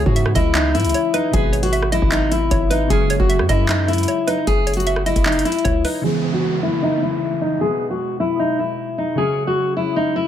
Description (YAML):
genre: hip hop, trap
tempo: 153 BPM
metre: 4/4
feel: half-time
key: C# minor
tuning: A4 = 442 Hz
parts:
  - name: nylon-string guitar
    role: melody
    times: 0.0-10.3 s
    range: D#4 to G#4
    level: -19 LUFS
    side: left 2 dB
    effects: low-pass filter, tape echo
  - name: hollow square pluck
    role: second line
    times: 0.0-6.0 s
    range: B4 to E5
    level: -27 LUFS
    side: right 5 dB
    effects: chorus, tape echo
  - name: glassy digital keys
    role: accompaniment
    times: 0.0-10.3 s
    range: B2 to C#4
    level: -26 LUFS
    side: right 2 dB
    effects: chorus, phaser, low-pass filter
  - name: hard-hitting 808-style bass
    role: bass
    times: 0.0-5.8 s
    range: F#1 to G#2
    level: -21 LUFS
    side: equal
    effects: none
  - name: booming analog drum machine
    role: drums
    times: 0.1-5.9 s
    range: handclaps, hi-hat, kick drum, rim click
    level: -21 LUFS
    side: equal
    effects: none
  - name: downlifter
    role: sound effects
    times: 6.0-9.2 s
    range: none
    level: -30 LUFS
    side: equal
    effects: none
room: light reverb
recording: none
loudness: -16 LUFS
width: side -10 dB against mid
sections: 0.0-6.0 A section; 6.0-10.3 B section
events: filter sweep 6.0-10.3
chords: 0.0 C#m7; 1.3 G#m; 2.9 F#sus2; 6.0 C#m7; 7.6 G#m; 9.2 F#sus2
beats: 0.16 0.55 0.94 | 1.34 1.73 2.12 2.51 | 2.90 3.30 3.69 4.08 | 4.47 4.87 5.26 5.65 | 6.04 6.43 6.83 7.22 | 7.61 8.00 8.39 8.79 | 9.18 9.57 9.96